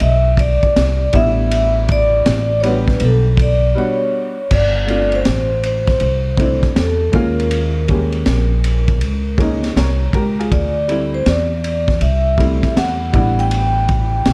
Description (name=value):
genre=hip hop, jazz-hop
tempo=80 BPM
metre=4/4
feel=swing 65% on 16ths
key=unclear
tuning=A4 = 440 Hz
part: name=vibraphone with medium mallets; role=melody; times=0.0-14.3 s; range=A4 to G5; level=-21 LUFS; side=equal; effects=none
part: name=upright bass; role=bass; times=0.0-14.3 s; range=G1 to E2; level=-20 LUFS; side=equal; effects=none
part: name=crunchy breakbeat drum kit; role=drums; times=0.0-14.3 s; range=crash cymbal, hi-hat, kick drum, ride cymbal, snare drum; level=-22 LUFS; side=equal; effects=none
part: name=warm upright piano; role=accompaniment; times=1.1-14.3 s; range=G3 to Db5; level=-24 LUFS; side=equal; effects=none
room=studio reverb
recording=dark, warm production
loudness=-16 LUFS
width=mono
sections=0.0-4.5 A section; 4.5-14.3 B section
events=vibraphone solo 0.0-4.5; break 3.8-4.5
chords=0.0 D7sus2; 1.1 A9sus4; 4.5 Gsus4; 7.1 Eb9sus4; 10.5 D9sus4; 13.1 A9sus4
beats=0.01 0.76 | 1.51 2.26 3.01 3.76 | 4.51 5.26 6.01 6.76 | 7.51 8.26 9.01 9.76 | 10.51 11.26 12.01 12.76 | 13.51 14.26